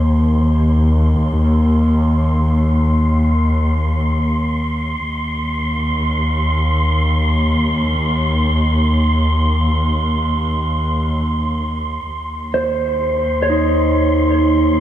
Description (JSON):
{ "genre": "ambient", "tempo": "free time", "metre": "none", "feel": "none", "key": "unclear", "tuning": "A4 = 441 Hz", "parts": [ { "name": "rich studio double bass section", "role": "bass", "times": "0.0-14.8 s", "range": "Eb2", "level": "-16 LUFS", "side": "equal", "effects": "none" }, { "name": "wind-like tuned noise texture", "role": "texture", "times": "0.0-14.8 s", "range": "C6", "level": "-23 LUFS", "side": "right 1 dB", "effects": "built-in reverb" }, { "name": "mellow electric guitar", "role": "arpeggios", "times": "12.5-14.8 s", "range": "Eb4 to Db5", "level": "-17 LUFS", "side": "right 1 dB", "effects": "phaser, diffuse ambient delay" } ], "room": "moderate cathedral reverb, RT60 4.6 s", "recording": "none", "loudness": "-14 LUFS", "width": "side -11 dB against mid", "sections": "0.0-12.1 A section; 12.1-14.8 B section", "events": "fade-in on synth texture 0.0-12.1", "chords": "0.0 Ab/Eb (rootless); 12.1 Cm/Eb", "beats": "free time" }